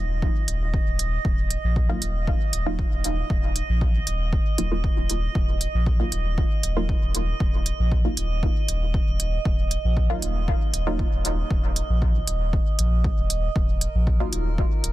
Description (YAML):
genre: dub techno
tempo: 117 BPM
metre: 4/4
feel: straight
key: Eb minor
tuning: A4 = 438 Hz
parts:
  - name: filtered dub chord stab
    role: stabs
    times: 0.0-11.1, 14.2-14.5 s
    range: Gb3 to F4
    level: -32 LUFS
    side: equal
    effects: chorus, phaser, sidechain pumping, dub echo
  - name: warm sub bass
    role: bass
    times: 0.0-14.9 s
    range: Eb1 to Bb1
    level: -24 LUFS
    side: equal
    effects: sidechain pumping
  - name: drifting glass-harmonics texture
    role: texture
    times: 0.0-14.9 s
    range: Bb4 to Eb5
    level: -33 LUFS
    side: right 7 dB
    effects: chorus, built-in reverb, sidechain pumping
  - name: electronic kick drum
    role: drums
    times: 0.2-14.7 s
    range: none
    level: -24 LUFS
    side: equal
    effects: none
  - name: electronic hi-hat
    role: drums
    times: 0.5-14.9 s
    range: none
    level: -27 LUFS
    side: right 2 dB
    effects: none
room: digital ambience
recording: dense, heavily limited modern master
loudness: -21 LUFS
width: side -16 dB against mid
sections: 0.0-14.9 A section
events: none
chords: 0.0 Ebmadd9